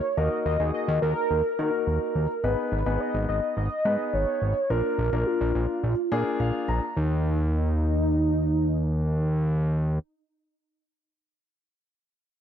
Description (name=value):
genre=synth-pop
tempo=106 BPM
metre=4/4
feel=straight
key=unclear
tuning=A4 = 438 Hz
part: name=warm velvety synth lead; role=melody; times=0.0-10.0 s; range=Eb4 to Eb5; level=-27 LUFS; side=right 1 dB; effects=chorus
part: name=warm concert grand piano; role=accompaniment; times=0.2-6.9 s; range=Bb3 to Bb5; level=-30 LUFS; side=left 4 dB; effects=none
part: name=fat analog bass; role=bass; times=0.2-10.0 s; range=Ab1 to Eb3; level=-25 LUFS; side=equal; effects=none
room=light reverb, studio ambience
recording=none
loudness=-23 LUFS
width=side -9 dB against mid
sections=0.0-7.0 A section; 7.0-9.2 B section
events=grand piano fill 6.1-7.0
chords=0.0 Ebm; 2.4 Abm; 4.7 Bb; 7.0 N.C.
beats=| 0.17 0.74 1.31 1.87 | 2.44 3.00 3.57 4.14 | 4.70 5.27 5.83 6.40 | 6.97 7.53 8.10 8.66